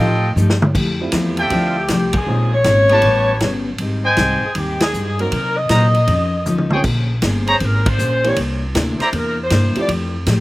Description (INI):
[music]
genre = jazz, big band swing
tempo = 158 BPM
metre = 4/4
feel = swing 66% on 8ths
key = unclear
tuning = A4 = 440 Hz
[part]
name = picked steel-string acoustic guitar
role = accompaniment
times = 0.0-10.4 s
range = Ab2 to C5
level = -23 LUFS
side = left 2 dB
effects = none
[part]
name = clear trumpet section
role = stabs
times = 0.0-9.1 s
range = E4 to Bb5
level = -18 LUFS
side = right 1 dB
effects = slapback echo
[part]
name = upright bass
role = bass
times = 0.0-10.4 s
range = G1 to C3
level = -19 LUFS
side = equal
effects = none
[part]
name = swinging big-band drum kit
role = drums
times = 0.4-10.4 s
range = crash cymbal, hi-hat, kick drum, ride cymbal, snare drum, toms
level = -22 LUFS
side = equal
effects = none
[part]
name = warm upright piano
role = accompaniment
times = 1.0-9.9 s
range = E3 to G#4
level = -24 LUFS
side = right 3 dB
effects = none
[part]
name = warm saxophone section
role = melody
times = 1.4-9.9 s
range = F4 to Eb5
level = -19 LUFS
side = left 1 dB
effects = slapback echo
[sound]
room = little or no reverb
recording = recorded outdoors, with no room sound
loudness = -14 LUFS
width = side -18 dB against mid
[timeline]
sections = 0.7-10.4 A section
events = drum fill 0.4-0.7, 6.5-6.8; band accent 2.1, 4.7, 7.8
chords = 0.0 F9; 0.7 Fmaj9; 2.3 Bbm11; 3.0 A9; 3.8 Abmaj7; 5.3 Cm7b5; 6.1 F7alt; 6.8 Bbm9; 8.4 C9; 9.9 Fmaj9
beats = 0.37 | 0.75 1.13 1.51 1.89 | 2.27 2.65 3.03 3.41 | 3.79 4.17 4.56 4.94 | 5.32 5.70 6.08 6.46 | 6.84 7.22 7.60 7.98 | 8.36 8.74 9.12 9.51 | 9.88 10.27